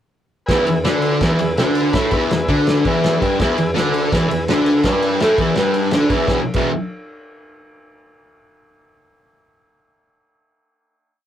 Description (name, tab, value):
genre	garage rock duo or trio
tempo	166 BPM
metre	4/4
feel	straight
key	E mixolydian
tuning	A4 = 438 Hz
part	overdriven combo organ	sustained chords	0.5-6.5 s	B4 to B5	-27 LUFS	equal	none
part	fuzz guitar	riff	0.5-6.7 s	E2 to D4	-17 LUFS	equal	distortion
part	dark bassoon	bass	0.5-6.7 s	D2 to A2	-22 LUFS	equal	none
part	cloth-damped thuddy drum kit	drums	0.5-6.6 s	crash cymbal, kick drum, ride cymbal, snare drum	-22 LUFS	equal	none
room	moderate booth ambience, RT60 0.2 s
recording	rough rehearsal-room recording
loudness	-15 LUFS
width	side -10 dB against mid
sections	0.5-6.3 riff; 6.3-7.7 final chord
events	none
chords	0.5 E